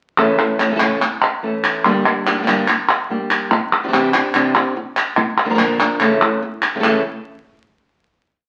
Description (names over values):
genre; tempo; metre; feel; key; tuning
flamenco; 144 BPM; 4/4; straight; A phrygian dominant; A4 = 440 Hz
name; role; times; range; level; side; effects
nylon-string guitar; accompaniment; 0.2-7.0 s; G2 to Bb4; -21 LUFS; equal; none
palmas hand claps; percussion; 0.2-6.9 s; none; -19 LUFS; equal; none
room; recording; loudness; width
wet studio reverb, RT60 0.9 s; very old 78 rpm record, vinyl crackle; -17 LUFS; mono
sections
0.2-6.8 groove; 6.8-8.5 final chord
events
none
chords
0.2 A; 1.8 Gm; 3.5 Cadd9; 5.2 Bb; 6.0 A